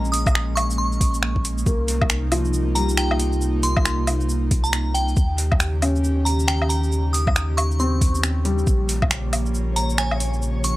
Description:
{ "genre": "future garage", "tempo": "137 BPM", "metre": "4/4", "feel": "swing 61% on 16ths", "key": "unclear", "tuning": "A4 = 437 Hz", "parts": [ { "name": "felt-muted upright piano", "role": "accompaniment", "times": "0.0-10.8 s", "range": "F3 to Db4", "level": "-28 LUFS", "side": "left 2 dB", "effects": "vintage 12-bit sampler grit, sidechain pumping, analog delay" }, { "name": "airy breathy pad", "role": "sustained chords", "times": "0.0-10.8 s", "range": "C3 to G4", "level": "-29 LUFS", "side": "right 2 dB", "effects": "chorus, sidechain pumping" }, { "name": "warm sub bass", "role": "bass", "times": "0.0-10.8 s", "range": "Bb1 to Eb2", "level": "-22 LUFS", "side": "equal", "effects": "tube saturation, sidechain pumping" }, { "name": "garage drum kit", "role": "drums", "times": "0.0-10.7 s", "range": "finger snaps, hi-hat, shaker, woodblock", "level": "-24 LUFS", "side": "equal", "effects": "overdrive" }, { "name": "glassy synth bell", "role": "melody", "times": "0.1-10.8 s", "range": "G5 to Eb6", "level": "-28 LUFS", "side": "equal", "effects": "chorus, analog delay" }, { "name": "electronic kick drum", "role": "drums", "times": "0.3-9.1 s", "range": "none", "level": "-20 LUFS", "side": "equal", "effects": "overdrive" }, { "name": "flickering grainy texture", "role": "texture", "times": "9.1-10.8 s", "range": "Db5", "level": "-35 LUFS", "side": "equal", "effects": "built-in reverb" } ], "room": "little or no reverb", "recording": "dry, gritty hardware recording", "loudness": "-18 LUFS", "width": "side -17 dB against mid", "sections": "0.0-1.7 A section; 1.7-10.8 A section", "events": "none", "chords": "0.0 Bbm7; 1.7 Cm7; 5.2 Eb7; 8.7 Bbm", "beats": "0.35 0.79 1.23 | 1.66 2.10 2.54 2.98 | 3.42 3.85 4.29 4.73 | 5.17 5.60 6.04 6.48 | 6.92 7.36 7.79 8.23 | 8.67 9.11 9.55 9.98 | 10.42" }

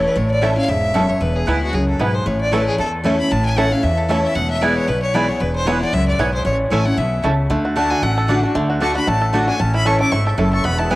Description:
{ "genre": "bluegrass", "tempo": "229 BPM", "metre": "4/4", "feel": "swing 55% on 8ths", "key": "A major", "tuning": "A4 = 439 Hz", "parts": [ { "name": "bright fiddle", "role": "second line", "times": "0.0-11.0 s", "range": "E4 to D6", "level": "-22 LUFS", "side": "left 1 dB", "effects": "cassette tape" }, { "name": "picked steel-string acoustic guitar", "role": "accompaniment", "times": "0.0-11.0 s", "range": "E2 to F#4", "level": "-20 LUFS", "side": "left 1 dB", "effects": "cassette tape" }, { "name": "upright bass", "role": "bass", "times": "0.0-11.0 s", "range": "E1 to E2", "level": "-21 LUFS", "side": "equal", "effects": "none" }, { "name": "bluegrass banjo", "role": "melody", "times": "0.4-11.0 s", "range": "A3 to A4", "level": "-26 LUFS", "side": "right 2 dB", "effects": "cassette tape, tape echo" }, { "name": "mandolin", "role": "stabs", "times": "0.4-11.0 s", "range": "A3 to A5", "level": "-25 LUFS", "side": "right 3 dB", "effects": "cassette tape" } ], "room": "wet spring reverb, RT60 2.8 s", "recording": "home recording on cassette", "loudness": "-15 LUFS", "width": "side -18 dB against mid", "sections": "0.0-7.5 A section; 7.5-11.0 A section", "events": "fiddle solo 0.0-11.0", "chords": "0.0 A; 1.2 E; 2.3 A; 4.4 E; 6.5 A; 7.5 D; 9.6 A", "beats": "| 0.16 0.42 0.69 0.95 | 1.21 1.47 1.74 2.00 | 2.26 2.52 2.78 3.05 | 3.31 3.57 3.83 4.09 | 4.36 4.62 4.88 5.14 | 5.41 5.67 5.93 6.19 | 6.45 6.71 6.98 7.24 | 7.50 7.76 8.02 8.29 | 8.55 8.81 9.07 9.33 | 9.60 9.86 10.12 10.38 | 10.64 10.91" }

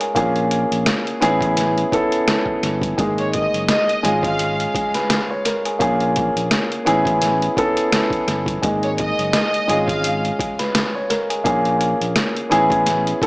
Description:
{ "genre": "hip hop, boom-bap hip-hop", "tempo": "85 BPM", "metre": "4/4", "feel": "swing 57% on 16ths", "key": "unclear", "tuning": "A4 = 440 Hz", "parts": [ { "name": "dark baby grand piano", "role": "accompaniment", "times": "0.0-13.3 s", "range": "G#3 to C#5", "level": "-18 LUFS", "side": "equal", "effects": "high-pass filter, low-pass filter" }, { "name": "trip hop sampler-style drum kit", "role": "drums", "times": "0.0-13.3 s", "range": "hi-hat, kick drum, snare drum", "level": "-22 LUFS", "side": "equal", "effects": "tape echo" }, { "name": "fingered electric bass", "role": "bass", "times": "0.2-13.1 s", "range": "F#1 to A#1", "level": "-24 LUFS", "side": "equal", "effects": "none" }, { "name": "warm symphonic violin section", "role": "melody", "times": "3.2-4.6, 8.8-10.2 s", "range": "C#5 to E#5", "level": "-22 LUFS", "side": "equal", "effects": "high-pass filter, low-pass filter, tape echo" } ], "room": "light reverb", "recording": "echo-heavy mix, small speaker sound", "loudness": "-16 LUFS", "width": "side -26 dB against mid", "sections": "0.0-13.3 A section", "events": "none", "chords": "0.2 A#m7; 1.2 Amaj7; 3.0 G#sus2; 4.0 C#/G#; 5.8 A#m7; 6.9 Amaj7; 8.6 G#sus2; 9.7 C#/G#; 11.4 A#m7; 12.5 Amaj7", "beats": "| 0.16 0.86 1.57 2.27 | 2.98 3.69 4.39 5.10 | 5.80 6.51 7.21 7.92 | 8.63 9.33 10.04 10.74 | 11.45 12.16 12.86" }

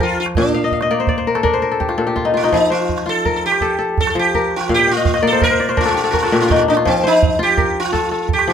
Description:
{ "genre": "west african traditional, West African string and xylophone music", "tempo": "111 BPM (dotted quarters)", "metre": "12/8", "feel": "straight", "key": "F mixolydian", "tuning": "A4 = 440 Hz", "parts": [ { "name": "sitar", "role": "melody", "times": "0.0-8.5 s", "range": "C4 to Bb4", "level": "-17 LUFS", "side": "right 2 dB", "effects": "none" }, { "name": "kora", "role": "arpeggios", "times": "0.0-8.5 s", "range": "Bb2 to G5", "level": "-16 LUFS", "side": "left 3 dB", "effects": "none" }, { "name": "calabash", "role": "percussion", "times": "0.2-8.5 s", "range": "none", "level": "-22 LUFS", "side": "right 5 dB", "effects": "none" } ], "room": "moderate small room reverb, RT60 0.6 s", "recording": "minimal, uncompressed stereo recording", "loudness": "-14 LUFS", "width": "side -8 dB against mid", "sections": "0.0-8.5 A section", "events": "kora fill 0.5-2.5, 4.7-6.9", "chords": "0.4 Bb; 2.5 F; 4.7 Bb; 6.9 F", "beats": "| 0.36 0.90 1.44 1.99 | 2.53 3.07 3.61 4.15 | 4.69 5.24 5.78 6.32 | 6.86 7.40 7.94 8.48" }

